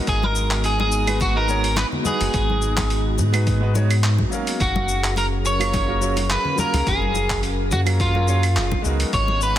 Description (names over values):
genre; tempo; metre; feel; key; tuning
sunset chillout; 106 BPM; 4/4; swing 54% on 16ths; unclear; A4 = 443 Hz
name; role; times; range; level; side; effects
warm grand piano; accompaniment; 0.0-9.6 s; F#3 to E#5; -29 LUFS; right 2 dB; auto-pan, digital delay
airy breathy pad; sustained chords; 0.0-9.6 s; F#3 to A#5; -30 LUFS; equal; chorus
electric guitar at the edge of break-up; melody; 0.1-9.6 s; E#4 to C#5; -23 LUFS; right 1 dB; digital delay
round analog bass; bass; 0.1-9.6 s; F#1 to G#2; -22 LUFS; equal; none
dusty soul sampler-style drum kit; drums; 0.1-9.5 s; claves, handclaps, hi-hat, shaker; -27 LUFS; equal; overdrive, studio reverb
electronic kick drum; drums; 0.1-9.3 s; none; -26 LUFS; equal; studio reverb
congas; percussion; 0.2-9.4 s; none; -30 LUFS; left 3 dB; none
wind-like tuned noise texture; texture; 9.3-9.6 s; F#5 to F#6; -42 LUFS; left 3 dB; none
room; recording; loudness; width
light reverb, digital ambience; dense, heavily limited modern master; -18 LUFS; side -12 dB against mid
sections
0.0-9.6 A section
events
none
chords
0.0 F#maj7